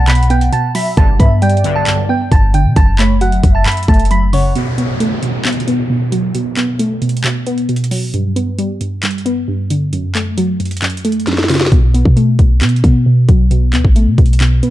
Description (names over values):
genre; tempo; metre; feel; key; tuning
hip hop, trap; 134 BPM; 4/4; half-time; B minor; A4 = 440 Hz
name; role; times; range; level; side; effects
delicate synth tine bell; melody; 0.0-4.5 s; C#5 to B6; -20 LUFS; right 3 dB; chorus, low-pass filter, ping-pong delay
warm velvety synth lead; second line; 0.0-4.5 s; C#5 to F#5; -24 LUFS; left 1 dB; chorus, ping-pong delay
warbly dusty pluck; accompaniment; 0.0-14.7 s; F#2 to B3; -16 LUFS; right 1 dB; chorus, low-pass filter
clean 808-style bass; bass; 0.0-4.5, 11.7-14.6 s; F#1 to B2; -12 LUFS; equal; none
trap drum kit; drums; 0.1-14.7 s; handclaps, hi-hat, kick drum, snare drum; -15 LUFS; equal; none
resonant sweep polysynth; stabs; 1.0-2.0 s; B1 to D3; -22 LUFS; left 2 dB; chorus
downlifter; sound effects; 4.6-8.1 s; none; -25 LUFS; equal; none
room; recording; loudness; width
little or no reverb; dark, warm production; -11 LUFS; side -14 dB against mid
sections
0.0-4.6 A section; 4.6-14.7 B section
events
break 4.6-11.7; drum fill 11.3-11.7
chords
0.0 B5; 1.0 G; 2.8 F#m; 4.6 B5; 8.1 G; 9.9 F#m; 11.7 B7(no3)